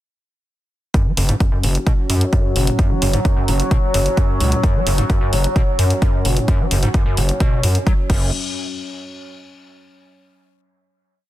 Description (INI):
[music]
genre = driving peak-time techno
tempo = 130 BPM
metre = 4/4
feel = straight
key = unclear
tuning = A4 = 441 Hz
[part]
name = overdriven acid bass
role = riff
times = 0.9-8.3 s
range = F#2 to F#3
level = -22 LUFS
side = equal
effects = lush chorus, sidechain pumping, dub echo
[part]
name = analog drone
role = drone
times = 1.3-8.4 s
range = F#3 to C#4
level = -24 LUFS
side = left 1 dB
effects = chorus, sidechain pumping
[part]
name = electronic kick drum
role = drums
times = 0.9-8.2 s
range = none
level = -17 LUFS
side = equal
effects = none
[part]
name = punchy analog drum machine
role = drums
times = 0.9-8.2 s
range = crash cymbal, hi-hat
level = -25 LUFS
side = left 1 dB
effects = none
[part]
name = gritty driven synth bass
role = bass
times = 1.2-8.3 s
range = F#1 to F#2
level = -18 LUFS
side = equal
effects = tube saturation, sidechain pumping
[sound]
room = light reverb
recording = dense, heavily limited modern master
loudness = -15 LUFS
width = side -14 dB against mid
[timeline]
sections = 0.9-8.3 groove; 8.3-10.2 final hit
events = filter sweep on acid bass 0.9-8.3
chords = 0.9 F#5; 8.3 N.C.